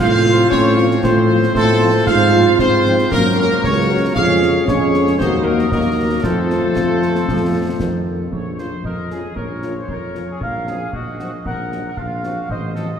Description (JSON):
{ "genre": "military-style march for wind band", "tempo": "115 BPM", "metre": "2/4", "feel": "straight", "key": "Bb minor", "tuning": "A4 = 440 Hz", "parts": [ { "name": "clear trumpet section", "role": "melody", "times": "0.0-12.9 s", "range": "F4 to F5", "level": "-22 LUFS", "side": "equal", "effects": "none" }, { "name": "mellow euphonium", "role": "second line", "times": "0.0-8.1 s", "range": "A3 to F4", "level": "-20 LUFS", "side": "right 3 dB", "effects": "none" }, { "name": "warm woodwind section", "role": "second line", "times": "0.0-13.0 s", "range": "F4 to Gb5", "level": "-23 LUFS", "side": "left 2 dB", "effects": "none" }, { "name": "clear trombone section", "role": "sustained chords", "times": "0.0-8.3 s", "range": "Eb3 to Db4", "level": "-26 LUFS", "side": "right 2 dB", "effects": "none" }, { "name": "mellow tuba", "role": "bass", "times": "0.0-12.9 s", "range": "A1 to A2", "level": "-20 LUFS", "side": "right 1 dB", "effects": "none" }, { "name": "mellow French horn section", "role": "accompaniment", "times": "0.2-12.9 s", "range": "F3 to Ab4", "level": "-24 LUFS", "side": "left 4 dB", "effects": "none" }, { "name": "concert snare drum, concert bass drum and clash cymbals", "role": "drums", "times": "0.3-12.9 s", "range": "none", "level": "-26 LUFS", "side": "left 1 dB", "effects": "none" } ], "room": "wet church reverb, RT60 3.1 s", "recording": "recorded in a church or concert hall", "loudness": "-14 LUFS", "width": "side -8 dB against mid", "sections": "0.0-8.3 A section; 8.3-13.0 B section", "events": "none", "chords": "0.0 F/A; 2.1 Fm/Ab; 3.1 Gb; 4.2 Db/F; 5.2 Ebm; 6.2 F; 8.3 Bbm; 10.4 Cm7b5/Bb; 12.5 F7/A", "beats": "0.51 | 1.03 1.55 | 2.07 2.59 | 3.11 3.63 | 4.15 4.67 | 5.19 5.71 | 6.24 6.76 | 7.28 7.80 | 8.32 8.84 | 9.36 9.88 | 10.41 10.93 | 11.45 11.97 | 12.50" }